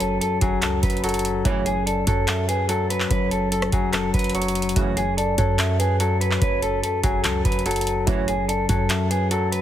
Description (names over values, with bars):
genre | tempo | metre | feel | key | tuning
hip hop, trap | 145 BPM | 4/4 | half-time | F# minor | A4 = 440 Hz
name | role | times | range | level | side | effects
mellow electric guitar | melody | 0.0-9.6 s | F#4 to C#5 | -25 LUFS | left 1 dB | none
hollow clarinet-like synth lead | second line | 0.0-9.3 s | B4 to E5 | -31 LUFS | right 6 dB | chorus, ping-pong delay
bell-like tine electric piano | accompaniment | 0.0-9.6 s | F#2 to F#3 | -26 LUFS | left 2 dB | auto-pan
clean 808-style bass | bass | 0.0-9.6 s | E1 to F#2 | -26 LUFS | right 1 dB | none
booming analog drum machine | drums | 0.0-9.6 s | handclaps, hi-hat, kick drum, rim click | -25 LUFS | equal | none
dark brass ensemble | stabs | 1.4-1.7, 4.8-5.1, 8.1-8.4 s | A2 to E3 | -30 LUFS | right 4 dB | none
room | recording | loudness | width
little or no reverb | heavily compressed radio sound | -19 LUFS | side -11 dB against mid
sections
0.0-9.6 A section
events
none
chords
0.0 F#m7; 1.4 F#m; 4.8 F#m7; 8.1 F#m